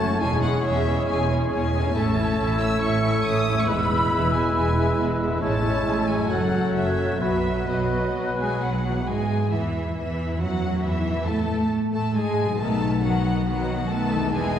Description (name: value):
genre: classical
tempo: 137 BPM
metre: 4/4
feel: rubato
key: E major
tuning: A4 = 439 Hz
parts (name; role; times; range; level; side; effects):
- rich chamber violin section; melody; 0.0-14.6 s; D#5 to E6; -30 LUFS; left 2 dB; none
- bright concert flute; second line; 0.0-8.8 s; C#6 to F#6; -32 LUFS; left 1 dB; none
- warm clarinet; second line; 0.0-8.8 s; C#4 to A4; -31 LUFS; left 1 dB; none
- warm oboe; second line; 0.0-8.8 s; B4 to C#5; -32 LUFS; right 1 dB; none
- warm symphonic violin section; second line; 0.0-14.6 s; E4 to E5; -32 LUFS; left 1 dB; none
- rich symphonic viola section; accompaniment; 0.0-14.6 s; D#3 to C#4; -29 LUFS; right 1 dB; none
- warm bassoon; accompaniment; 0.0-8.8 s; F#3 to A3; -31 LUFS; right 1 dB; none
- concert harp; arpeggios; 0.0-14.6 s; E2 to C#5; -32 LUFS; left 3 dB; none
- clear symphonic double bass section; bass; 0.0-14.6 s; E1 to A2; -27 LUFS; right 2 dB; none
- rich symphonic cello section; bass; 0.0-14.6 s; E2 to A3; -28 LUFS; right 1 dB; none
room: wet concert hall reverb, RT60 2.0 s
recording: heard from further back in the room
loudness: -21 LUFS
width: side -9 dB against mid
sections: 0.0-9.1 A section; 9.1-14.6 B section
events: none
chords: 0.2 C#m/E; 1.9 A; 3.7 E; 5.4 Amaj7; 6.3 F#m; 7.2 B; 9.1 E; 10.8 A/E; 12.6 B7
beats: | 0.21 0.65 1.08 1.52 | 1.95 2.38 2.82 3.25 | 3.68 4.12 4.55 4.99 | 5.42 5.86 6.30 6.75 | 7.21 7.68 8.15 8.61 | 9.07 9.52 9.96 10.40 | 10.84 11.28 11.72 12.16 | 12.60 13.03 13.47 13.91 | 14.34